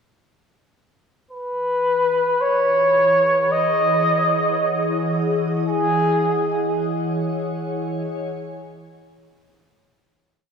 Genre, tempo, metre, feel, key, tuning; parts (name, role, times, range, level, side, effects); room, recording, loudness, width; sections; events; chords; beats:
ambient; 55 BPM; 4/4; straight; E major; A4 = 439 Hz
warm flugelhorn; melody; 1.3-6.7 s; G#4 to D#5; -18 LUFS; equal; tape echo
glassy FM pad; sustained chords; 2.8-10.0 s; E3 to G#5; -24 LUFS; left 1 dB; ensemble chorus, built-in reverb
wet huge ambient reverb, RT60 8.0 s; -18 LUFS; side -6 dB against mid
1.3-10.0 A section
fade-in on ambient pad 1.3-10.0; fade-out 5.7-10.0
1.3 Emaj9; 5.7 C#m/E
| 1.30 2.40 3.49 4.58 | 5.67 6.76 7.85 8.94